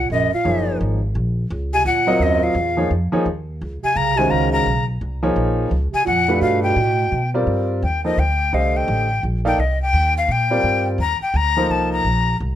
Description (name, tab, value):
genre	modal jazz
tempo	171 BPM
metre	3/4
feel	swing 63% on 8ths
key	Eb dorian, C dorian from 7.5 s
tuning	A4 = 440 Hz
part	breathy bright jazz flute	melody	0.0-12.4 s	Eb5 to Bb5	-20 LUFS	left 4 dB	plate reverb
part	dark bass clarinet	second line	0.0-7.3 s	Gb2 to Db3	-22 LUFS	right 6 dB	none
part	upright bass	bass	0.0-12.6 s	Gb1 to B2	-22 LUFS	equal	none
part	clear concert grand piano	accompaniment	0.4-12.0 s	D3 to F5	-20 LUFS	equal	none
room	light reverb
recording	none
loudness	-16 LUFS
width	side -11 dB against mid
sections	0.0-7.5 A section; 7.5-12.6 B section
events	flute solo 7.5-12.6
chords	0.0 Ebm9; 3.3 Bbmadd9; 6.4 G7; 7.5 Cm7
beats	| 0.10 0.45 0.80 | 1.15 1.50 1.85 | 2.20 2.56 2.91 | 3.26 3.61 3.96 | 4.31 4.66 5.01 | 5.37 5.72 6.07 | 6.42 6.77 7.12 | 7.47 7.83 8.18 | 8.53 8.88 9.23 | 9.59 9.94 10.29 | 10.64 10.99 11.34 | 11.70 12.05 12.40